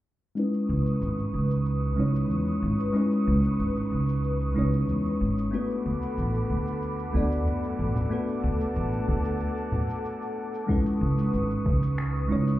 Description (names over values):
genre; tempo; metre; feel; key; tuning
sunset chillout; 93 BPM; 4/4; straight; unclear; A4 = 440 Hz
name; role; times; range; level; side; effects
bell-like tine electric piano; accompaniment; 0.4-12.6 s; G#3 to D5; -28 LUFS; equal; auto-pan, low-pass filter, tape echo
airy breathy pad; sustained chords; 0.4-12.6 s; A4 to D#6; -35 LUFS; left 1 dB; chorus
smooth R&B drum kit; drums; 0.4-12.6 s; finger snaps, hi-hat, shaker; -42 LUFS; equal; none
upright bass; bass; 0.7-12.6 s; G#1 to F#2; -27 LUFS; right 1 dB; none
congas; percussion; 8.0-9.9 s; none; -32 LUFS; equal; none
electronic kick drum; drums; 10.7-11.8 s; none; -26 LUFS; equal; none
room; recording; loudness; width
light reverb; heard muffled through a wall, club reverb, EQ; -24 LUFS; side -15 dB against mid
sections
0.4-10.7 A section; 10.7-12.6 B section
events
filter sweep on upright bass 0.4-10.7; filter sweep on tine electric piano 0.4-10.7; break 9.4-10.7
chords
0.4 C#m9; 5.5 D6; 10.7 C#m9